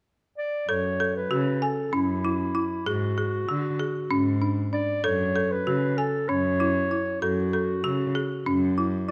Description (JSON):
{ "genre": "contemporary instrumental, chamber music in an uneven meter", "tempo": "193 BPM (eighths)", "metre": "7/8", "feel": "straight", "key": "F# minor", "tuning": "A4 = 441 Hz", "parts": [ { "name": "mellow clarinet", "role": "melody", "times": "0.4-9.1 s", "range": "E4 to D5", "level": "-31 LUFS", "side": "equal", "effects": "none" }, { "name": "folk marimba with hard mallets", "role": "arpeggios", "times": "0.7-9.1 s", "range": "C#4 to G#5", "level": "-29 LUFS", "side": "equal", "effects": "none" }, { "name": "dark cello", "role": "bass", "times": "0.7-9.1 s", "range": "F#2 to D3", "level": "-31 LUFS", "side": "equal", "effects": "none" } ], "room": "moderate scoring stage reverb, RT60 1.8 s", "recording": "none", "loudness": "-26 LUFS", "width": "mono", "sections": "0.7-9.1 A section", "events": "none", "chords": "0.0 N.C.; 0.7 F#m7; 2.9 D(#11)/G#; 5.0 F#m7", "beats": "0.07 0.38 | 0.69 1.00 1.31 1.62 1.93 2.24 2.56 | 2.87 3.18 3.49 3.80 4.11 4.42 4.73 | 5.05 5.36 5.67 5.98 6.29 6.60 6.91 | 7.22 7.53 7.84 8.15 8.46 8.77 9.08" }